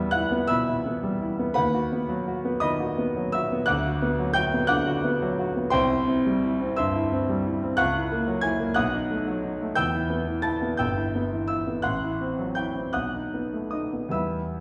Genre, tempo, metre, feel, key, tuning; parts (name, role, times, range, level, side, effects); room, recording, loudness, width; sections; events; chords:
classical, romantic character piece for solo piano; 48-62 BPM (dotted quarters); 6/8; rubato; A4 = 436 Hz
clear grand piano; solo; 0.0-14.6 s; G1 to A6; -26 LUFS; equal
wet recital hall reverb, RT60 1.6 s; heard from further back in the room; -26 LUFS; mono
0.0-14.6 A section
0.0 Em; 1.6 B/D#; 3.7 Bm/D; 5.7 C; 7.8 F#7/C#; 8.8 B7; 9.8 Em; 10.8 Em/G; 11.8 F#m7b5/A; 12.9 B7